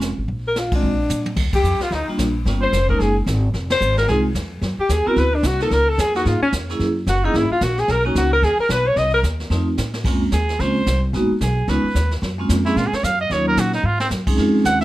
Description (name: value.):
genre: jazz, small-group swing and bop.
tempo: 221 BPM.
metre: 4/4.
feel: swing 60% on 8ths.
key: Bb minor.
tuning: A4 = 442 Hz.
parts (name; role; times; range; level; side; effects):
upright bass; bass; 0.0-14.8 s; F1 to Bb2; -21 LUFS; equal; none.
jazz brush drum kit; drums; 0.0-14.8 s; brushed snare drum, crash cymbal, hi-hat, kick drum, ride cymbal, snare drum, toms; -26 LUFS; equal; none.
breathy alto saxophone; melody; 0.5-9.2 s; C#4 to Eb5; -20 LUFS; left 2 dB; none.
vibraphone with medium hard mallets; accompaniment; 0.7-14.8 s; Gb3 to Bb4; -21 LUFS; right 1 dB; none.
clear trumpet; second line; 1.5-14.8 s; C4 to Gb5; -23 LUFS; right 2 dB; none.
room: moderate studio reverb, RT60 0.6 s.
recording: none.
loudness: -17 LUFS.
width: side -16 dB against mid.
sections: 0.0-1.4 A section; 1.4-10.1 B section; 10.1-14.8 C section.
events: band accent 0.7, 1.5, 3.7; drum fill 1.1, 9.8, 13.8; trumpet solo 10.1-14.8.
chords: 0.0 Bb7(no3); 0.8 Bb; 1.4 Ebmaj9; 2.5 Gm7b5; 3.0 Gbsus2; 3.5 Fm7; 4.6 Ebm; 5.2 D13b9; 5.7 Db6; 6.8 Gb9; 7.9 Bmaj9; 9.0 Cm7; 9.5 F7; 10.1 Bbm9; 11.1 Abm7; 11.7 Db9; 12.2 Gbmaj9#11; 13.3 Ebm7; 13.8 Ab7.